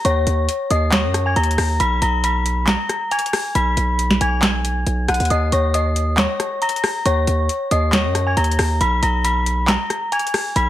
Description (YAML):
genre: hip hop, trap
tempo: 137 BPM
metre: 4/4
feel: half-time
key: Eb minor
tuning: A4 = 437 Hz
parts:
  - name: dark detuned synth bell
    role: melody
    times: 0.0-10.7 s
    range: Db5 to B6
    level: -20 LUFS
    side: left 2 dB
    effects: chorus
  - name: distorted 808-style bass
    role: bass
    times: 0.0-10.7 s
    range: B1 to Gb2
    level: -19 LUFS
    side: equal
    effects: distortion
  - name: booming analog drum machine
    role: drums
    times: 0.0-10.7 s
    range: handclaps, hi-hat, rim click, snare drum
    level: -21 LUFS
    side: equal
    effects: none
room: light reverb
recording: none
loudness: -16 LUFS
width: side -13 dB against mid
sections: 0.0-10.7 A section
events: none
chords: 0.0 Ebm7; 1.8 B5; 5.3 Eb7(no3); 8.8 B5